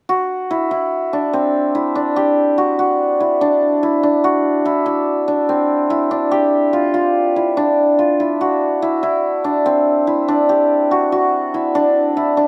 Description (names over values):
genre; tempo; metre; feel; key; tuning
progressive instrumental, progressive; 144 BPM; 5/4; straight; C lydian; A4 = 440 Hz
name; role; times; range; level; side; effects
hammered dulcimer; solo; 0.1-12.5 s; C4 to G4; -16 LUFS; equal; none
room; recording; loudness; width
light reverb; close, detailed microphones; -17 LUFS; mono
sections
0.1-12.5 A section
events
none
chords
0.1 C; 2.2 G5; 4.2 C; 6.3 Dmadd9; 8.4 C; 10.5 G5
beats
| 0.09 0.51 0.92 1.34 1.75 | 2.17 2.58 3.00 3.41 3.83 | 4.24 4.66 5.07 5.49 5.91 | 6.32 6.74 7.16 7.57 7.99 | 8.41 8.82 9.24 9.66 10.07 | 10.49 10.91 11.32 11.74 12.16